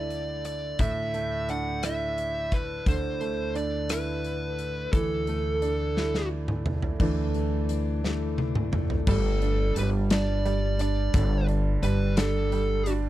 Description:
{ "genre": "six-eight pop ballad", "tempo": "58 BPM (dotted quarters)", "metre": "6/8", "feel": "straight", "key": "G major", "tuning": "A4 = 441 Hz", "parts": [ { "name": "fuzz lead guitar", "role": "melody", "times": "0.0-12.9 s", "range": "A4 to F#5", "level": "-30 LUFS", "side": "equal", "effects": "distortion" }, { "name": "bright upright piano", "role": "accompaniment", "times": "0.0-13.1 s", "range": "A2 to E4", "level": "-31 LUFS", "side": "right 5 dB", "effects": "none" }, { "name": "upright bass", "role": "bass", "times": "0.0-13.1 s", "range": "F#1 to D2", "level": "-29 LUFS", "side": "left 1 dB", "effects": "none" }, { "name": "huge arena drum kit", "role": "drums", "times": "0.1-13.0 s", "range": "crash cymbal, hi-hat, kick drum, rim click, snare drum, toms", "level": "-28 LUFS", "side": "left 1 dB", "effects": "none" }, { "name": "fingerpicked steel-string acoustic guitar", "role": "arpeggios", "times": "7.0-9.6 s", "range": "E3 to D4", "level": "-34 LUFS", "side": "left 15 dB", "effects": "none" } ], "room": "little or no reverb", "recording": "dry, close 1970s-style studio recording", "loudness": "-24 LUFS", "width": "side -14 dB against mid", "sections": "0.0-7.0 A section; 7.0-9.1 B section; 9.1-13.1 C section", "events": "drum fill 6.0-7.0, 8.0-9.1; upright piano solo 7.0-9.1", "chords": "0.0 Dsus2; 9.1 Gsus2" }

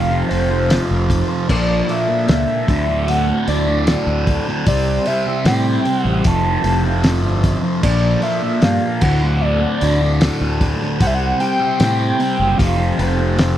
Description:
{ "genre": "psychedelic rock", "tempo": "76 BPM", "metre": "4/4", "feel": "straight", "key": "unclear", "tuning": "A4 = 440 Hz", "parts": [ { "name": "hollow square lead", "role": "melody", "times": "0.0-13.6 s", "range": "C5 to A5", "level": "-22 LUFS", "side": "equal", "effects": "chorus, tape echo" }, { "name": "overdriven combo organ", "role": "sustained chords", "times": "0.0-13.6 s", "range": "F3 to C5", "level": "-28 LUFS", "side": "right 5 dB", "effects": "none" }, { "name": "thick fuzz guitar", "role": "riff", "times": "0.0-13.6 s", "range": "D2 to C4", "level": "-20 LUFS", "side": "left 1 dB", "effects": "distortion, phaser" }, { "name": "fuzz fingered electric bass", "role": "bass", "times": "0.0-13.6 s", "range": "F1 to A2", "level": "-19 LUFS", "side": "equal", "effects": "overdrive" }, { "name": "cloth-damped thuddy drum kit", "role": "drums", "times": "0.3-13.6 s", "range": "crash cymbal, hi-hat, kick drum, snare drum", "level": "-19 LUFS", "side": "equal", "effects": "none" } ], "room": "small room ambience", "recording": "dry, close 1970s-style studio recording", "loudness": "-14 LUFS", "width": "side -11 dB against mid", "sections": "0.0-13.6 A section", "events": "none", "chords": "0.0 F; 1.5 Bbmaj7; 2.7 D7; 4.7 C; 6.3 Fmaj7; 7.8 Bbmaj7; 9.0 D7; 11.0 C5; 12.6 F" }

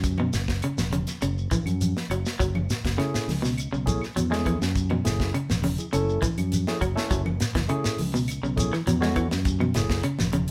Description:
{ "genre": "afrobeat", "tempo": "102 BPM", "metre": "4/4", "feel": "straight", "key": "F# minor", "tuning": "A4 = 441 Hz", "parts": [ { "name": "fingered electric bass", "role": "bass", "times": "0.0-10.5 s", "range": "E1 to F#2", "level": "-30 LUFS", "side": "equal", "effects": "none" }, { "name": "tight funk drum kit", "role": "drums", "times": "0.0-10.5 s", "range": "hi-hat, kick drum, snare drum", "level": "-32 LUFS", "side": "equal", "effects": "none" }, { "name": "congas", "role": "percussion", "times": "0.0-10.5 s", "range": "none", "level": "-34 LUFS", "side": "equal", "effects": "none" }, { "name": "shekere", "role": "percussion", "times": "0.0-10.5 s", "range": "none", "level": "-34 LUFS", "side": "equal", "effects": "none" }, { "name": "electric guitar at the edge of break-up", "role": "arpeggios", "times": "0.2-10.5 s", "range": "B2 to G#3", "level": "-31 LUFS", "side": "equal", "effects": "none" }, { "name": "claves", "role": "percussion", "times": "0.2-10.2 s", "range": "none", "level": "-45 LUFS", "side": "equal", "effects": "none" }, { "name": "barky tine electric piano", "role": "accompaniment", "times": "3.0-10.0 s", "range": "A3 to A4", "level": "-33 LUFS", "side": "equal", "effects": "none" } ], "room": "moderate studio reverb, RT60 0.7 s", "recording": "band playing live in one room", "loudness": "-26 LUFS", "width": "mono", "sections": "0.0-10.5 A section", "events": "none", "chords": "0.0 F#m9" }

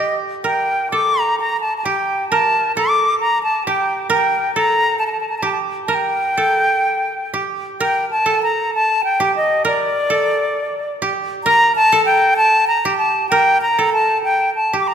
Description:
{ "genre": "japanese traditional, Japanese chamber music", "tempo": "65 BPM", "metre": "2/4", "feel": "rubato", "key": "G hirajoshi", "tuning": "A4 = 439 Hz", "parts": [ { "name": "bright concert flute", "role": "melody", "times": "0.0-14.9 s", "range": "D5 to D6", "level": "-16 LUFS", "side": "left 1 dB", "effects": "none" }, { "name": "koto", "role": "second line", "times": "0.0-14.9 s", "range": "G4 to Bb4", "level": "-21 LUFS", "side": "right 4 dB", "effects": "none" } ], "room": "moderate church reverb, RT60 3.2 s", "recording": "minimal, uncompressed stereo recording", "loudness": "-14 LUFS", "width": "side -8 dB against mid", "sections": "0.0-7.8 A section; 7.8-14.9 B section", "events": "none", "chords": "none" }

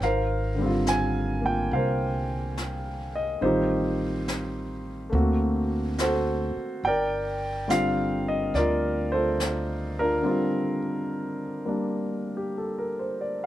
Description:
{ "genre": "jazz ballad", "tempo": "70 BPM", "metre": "4/4", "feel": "swing 68% on 8ths", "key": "G minor", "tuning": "A4 = 440 Hz", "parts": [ { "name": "warm concert grand piano", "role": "accompaniment", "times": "0.0-13.5 s", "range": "D3 to Ab5", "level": "-25 LUFS", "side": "equal", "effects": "none" }, { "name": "upright bass", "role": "bass", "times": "0.0-10.2 s", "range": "G1 to D2", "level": "-30 LUFS", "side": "equal", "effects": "none" }, { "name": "jazz brush drum kit", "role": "drums", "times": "0.0-10.9 s", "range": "brushed snare drum, hi-hat, snare drum", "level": "-36 LUFS", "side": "left 1 dB", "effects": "none" } ], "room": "little or no reverb", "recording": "none", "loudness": "-24 LUFS", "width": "side -13 dB against mid", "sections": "0.0-13.5 A section", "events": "break 10.2-13.5", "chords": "0.0 Ab69; 3.4 Am7b5; 5.1 D7b13; 6.8 Gm9" }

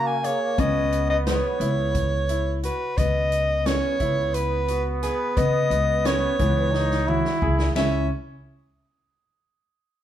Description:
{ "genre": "progressive instrumental, band music in an uneven meter", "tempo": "175 BPM (eighths)", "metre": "7/8", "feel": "straight", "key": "C# dorian", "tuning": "A4 = 440 Hz", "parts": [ { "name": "clear soprano saxophone", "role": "melody", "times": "0.0-8.1 s", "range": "B4 to G#5", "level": "-25 LUFS", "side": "equal", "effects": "none" }, { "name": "bright trombone", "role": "second line", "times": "0.0-8.1 s", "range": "A#3 to E4", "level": "-29 LUFS", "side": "right 1 dB", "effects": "none" }, { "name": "bright grand piano", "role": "arpeggios", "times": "0.0-8.1 s", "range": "E3 to G#4", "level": "-29 LUFS", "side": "left 4 dB", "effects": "none" }, { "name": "upright bass", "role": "bass", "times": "0.0-8.1 s", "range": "C#2 to C#3", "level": "-25 LUFS", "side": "equal", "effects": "none" }, { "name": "swinging big-band drum kit", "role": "drums", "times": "0.2-7.9 s", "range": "hi-hat, kick drum, ride cymbal, snare drum, toms", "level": "-29 LUFS", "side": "equal", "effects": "none" } ], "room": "moderate large studio reverb, RT60 1.0 s", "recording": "band playing live in one room", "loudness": "-20 LUFS", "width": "side -11 dB against mid", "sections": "0.0-3.0 A section; 3.0-7.8 B section; 7.8-10.0 C section", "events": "drum fill 6.7-7.8", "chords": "0.0 F#add9/C#; 0.6 C#m7; 7.8 C#m" }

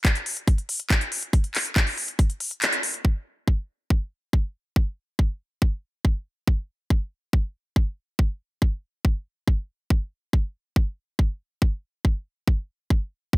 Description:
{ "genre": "trance", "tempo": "140 BPM", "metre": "4/4", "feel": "straight", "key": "none", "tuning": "none", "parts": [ { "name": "drum and bass drum kit", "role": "drums", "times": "0.0-3.0 s", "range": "handclaps, hi-hat", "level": "-24 LUFS", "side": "left 1 dB", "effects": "low-pass filter on hats, low-pass filter on snare" }, { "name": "electronic kick drum", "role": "drums", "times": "0.0-13.4 s", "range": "none", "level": "-20 LUFS", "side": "equal", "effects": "none" } ], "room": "digital ambience", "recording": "none", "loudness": "-23 LUFS", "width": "side -19 dB against mid", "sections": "0.0-3.0 A section; 3.0-13.4 B section", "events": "kick drops out 2.6-3.0; band accent 2.6", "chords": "none" }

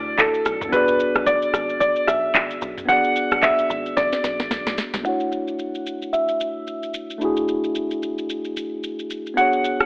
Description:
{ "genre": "amapiano", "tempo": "111 BPM", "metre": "4/4", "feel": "swing 58% on 16ths", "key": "unclear", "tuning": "A4 = 440 Hz", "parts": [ { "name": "clear grand piano", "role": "melody", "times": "0.0-9.9 s", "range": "A4 to F#5", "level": "-20 LUFS", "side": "equal", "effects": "low-pass filter, tape echo" }, { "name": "tine electric piano", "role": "accompaniment", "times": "0.0-9.9 s", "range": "A3 to D5", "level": "-25 LUFS", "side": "equal", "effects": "low-pass filter" }, { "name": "deep log drum bass", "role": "bass", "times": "0.0-5.0 s", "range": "G#1 to D2", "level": "-33 LUFS", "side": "equal", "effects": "none" }, { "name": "afro-pop drum kit", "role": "drums", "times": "0.2-9.9 s", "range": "handclaps, kick drum, rim click, shaker, snare drum, toms", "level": "-23 LUFS", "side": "equal", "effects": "none" } ], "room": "light reverb, digital ambience", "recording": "telephone sound", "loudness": "-19 LUFS", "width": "side -26 dB against mid", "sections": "0.0-5.1 A section; 5.1-9.9 B section", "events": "drop 0.0-5.1; drum fill 4.0-5.1; filter sweep 5.1-9.9", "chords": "0.0 Dmaj9; 0.7 Bm6; 5.1 Dmaj9" }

